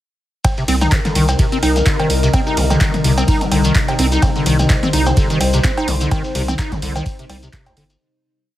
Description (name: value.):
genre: acid house.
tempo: 127 BPM.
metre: 4/4.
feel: swing 56% on 16ths.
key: C minor.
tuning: A4 = 440 Hz.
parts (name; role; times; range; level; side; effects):
warbly tape-like pad; sustained chords; 0.9-8.0 s; C3 to C5; -22 LUFS; left 2 dB; chorus, built-in reverb, phaser, sidechain pumping.
dusty soul sampler-style drum kit; drums; 0.4-8.0 s; hi-hat, ride cymbal, snare drum; -32 LUFS; right 1 dB; none.
electronic kick drum; drums; 0.4-7.6 s; none; -18 LUFS; equal; overdrive.
punchy analog drum machine; drums; 0.4-8.0 s; cowbell, handclaps, hi-hat, ride cymbal, toms; -21 LUFS; equal; overdrive.
shekere; percussion; 0.4-8.0 s; none; -30 LUFS; left 1 dB; none.
acid bass, square; riff; 0.6-7.8 s; C2 to Eb4; -20 LUFS; equal; tube saturation, ensemble chorus, digital delay.
round analog bass; bass; 0.7-8.0 s; G1 to C2; -18 LUFS; equal; sidechain pumping.
room: moderate small room reverb, RT60 0.5 s.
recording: heavily compressed radio sound.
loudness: -14 LUFS.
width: side -14 dB against mid.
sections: 0.4-8.0 drop.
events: drop 0.4-8.0; fade-out 5.5-8.0.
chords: 0.4 Cm7.